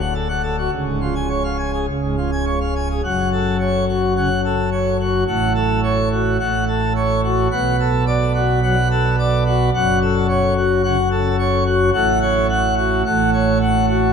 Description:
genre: classical, organ toccata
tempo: 108 BPM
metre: 4/4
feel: straight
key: F# minor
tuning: A4 = 440 Hz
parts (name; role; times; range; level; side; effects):
- pipe organ, plenum; solo; 0.0-14.1 s; C#1 to G#5; -16 LUFS; equal; none
room: wet church reverb, RT60 3.4 s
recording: none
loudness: -16 LUFS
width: side -6 dB against mid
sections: 0.0-3.0 A section; 3.0-14.1 B section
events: none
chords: 0.0 D; 0.7 C#; 3.0 F#m; 5.3 F#m/A; 7.5 Bm7; 9.7 F#m; 11.9 F#m/A

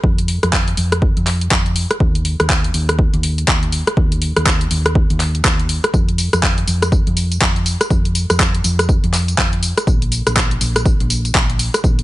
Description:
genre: deep house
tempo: 122 BPM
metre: 4/4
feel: swing 60% on 16ths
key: unclear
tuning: A4 = 439 Hz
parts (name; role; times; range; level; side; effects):
- hollow-body short-scale fingered electric bass; bass; 0.0-12.0 s; Bb1 to F2; -19 LUFS; equal; sidechain pumping
- electronic kick drum; drums; 0.0-12.0 s; none; -17 LUFS; equal; none
- deep house drum kit; drums; 0.2-12.0 s; handclaps, hi-hat, rim click, tambourine; -18 LUFS; equal; none
room: little or no reverb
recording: nothing above 10.7 kHz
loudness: -14 LUFS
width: side -16 dB against mid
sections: 0.0-12.0 A section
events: none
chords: none

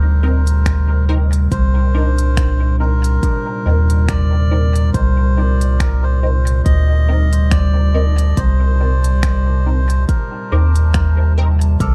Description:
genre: ambient dub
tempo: 70 BPM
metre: 4/4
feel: swing 56% on 16ths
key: C dorian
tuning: A4 = 442 Hz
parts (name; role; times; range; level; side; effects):
- melodica; melody; 0.0-11.9 s; A4 to Eb5; -28 LUFS; equal; analog delay
- warbly tape-like pad; sustained chords; 0.0-11.9 s; Bb2 to A5; -26 LUFS; equal; chorus, built-in reverb
- Celtic harp; arpeggios; 0.0-5.3, 10.5-11.9 s; D4 to F6; -35 LUFS; equal; analog delay
- soft dub sub bass; bass; 0.0-11.9 s; C2 to Eb2; -16 LUFS; equal; none
- filtered dub chord stab; stabs; 0.2-11.6 s; C4 to Bb4; -31 LUFS; equal; phaser, ensemble chorus, dub echo
- organic electronic drum kit; drums; 0.5-11.9 s; finger snaps, hi-hat; -31 LUFS; equal; studio reverb, dub echo
- electronic kick drum; drums; 0.7-11.9 s; none; -21 LUFS; equal; studio reverb
room: little or no reverb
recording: echo-heavy mix, lossy compression artefacts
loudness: -15 LUFS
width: mono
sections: 0.0-11.9 A section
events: none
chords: 0.0 Cm7

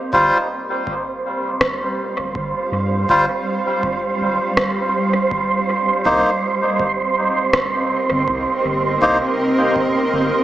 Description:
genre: ambient dub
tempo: 81 BPM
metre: 4/4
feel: swing 54% on 16ths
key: C minor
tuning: A4 = 440 Hz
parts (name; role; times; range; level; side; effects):
- granular cloud pad; sustained chords; 0.0-10.4 s; G3 to F5; -22 LUFS; equal; built-in reverb
- wind-like tuned noise texture; texture; 0.0-10.4 s; C5; -21 LUFS; right 4 dB; built-in reverb
- melodica; stabs; 0.1-9.2 s; G3 to C5; -20 LUFS; equal; dub echo
- soft dub sub bass; bass; 0.1-10.3 s; D1 to G2; -25 LUFS; equal; none
- electronic kick drum; drums; 0.1-9.9 s; none; -33 LUFS; equal; none
- electronic rim click; drums; 1.6-7.7 s; none; -23 LUFS; equal; dub echo
room: wet echo chamber reverb, RT60 2.1 s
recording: small speaker sound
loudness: -16 LUFS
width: side -13 dB against mid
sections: 0.0-10.4 A section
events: fade-in on ambient pad 0.0-10.4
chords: 0.1 G7sus4; 6.1 Cm7

